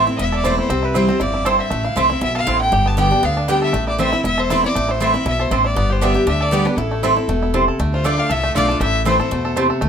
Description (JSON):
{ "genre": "bluegrass", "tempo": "237 BPM", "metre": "4/4", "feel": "swing 54% on 8ths", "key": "A minor", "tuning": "A4 = 439 Hz", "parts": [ { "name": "bluegrass banjo", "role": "melody", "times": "0.0-9.9 s", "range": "A3 to A4", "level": "-25 LUFS", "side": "right 3 dB", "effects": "none" }, { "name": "rich fiddle", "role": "melody", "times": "0.0-9.7 s", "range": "A4 to A5", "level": "-21 LUFS", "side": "left 2 dB", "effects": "plate reverb" }, { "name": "picked steel-string acoustic guitar", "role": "accompaniment", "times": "0.0-9.9 s", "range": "E2 to G4", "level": "-21 LUFS", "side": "left 1 dB", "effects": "none" }, { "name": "mandolin", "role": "stabs", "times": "0.0-9.7 s", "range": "A3 to A5", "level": "-20 LUFS", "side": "right 4 dB", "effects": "none" }, { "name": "upright bass", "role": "bass", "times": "0.0-9.9 s", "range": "E1 to E2", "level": "-22 LUFS", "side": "equal", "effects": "none" } ], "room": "moderate small room reverb, RT60 0.5 s", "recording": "none", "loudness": "-15 LUFS", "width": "side -8 dB against mid", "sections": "0.0-7.8 A section; 7.8-9.9 B section", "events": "none", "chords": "0.0 Am; 0.7 C; 1.7 Am; 2.7 G; 3.7 Am; 5.8 G; 6.8 Am; 7.8 Dm; 8.8 Am" }